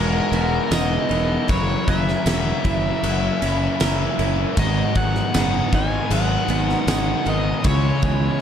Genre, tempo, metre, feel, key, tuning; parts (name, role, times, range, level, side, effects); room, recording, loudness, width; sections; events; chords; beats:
rock, shoegaze and dream pop; 78 BPM; 4/4; straight; A4 = 440 Hz
smooth overdriven lead guitar; melody; 0.0-8.4 s; A#4 to G#5; -26 LUFS; equal; analog delay
picked twelve-string acoustic guitar; arpeggios; 0.0-8.4 s; D#4 to D#5; -32 LUFS; left 2 dB; analog chorus, analog delay
cranked stack guitar; riff; 0.0-8.4 s; F#2 to E4; -28 LUFS; equal; overdrive
semi-hollow electric guitar; riff; 0.0-8.4 s; E2 to A#4; -27 LUFS; right 10 dB; reverse reverb
thick fuzz guitar; riff; 0.0-8.4 s; E2 to B4; -27 LUFS; left 7 dB; distortion, wide subtle chorus
fuzz fingered electric bass; bass; 0.0-8.3 s; E1 to C#2; -24 LUFS; equal; overdrive
huge arena drum kit; drums; 0.3-8.2 s; crash cymbal, kick drum, snare drum; -24 LUFS; equal
tambourine; percussion; 0.7-7.1 s; -35 LUFS; right 7 dB
little or no reverb; dark, warm production; -18 LUFS; side -8 dB against mid
0.0-8.4 A section
0.0 Emaj9#11; 1.5 F#7; 4.6 G#m7; 7.6 C#m7
0.71 | 1.49 2.26 3.03 3.80 | 4.57 5.34 6.11 6.87 | 7.64 8.41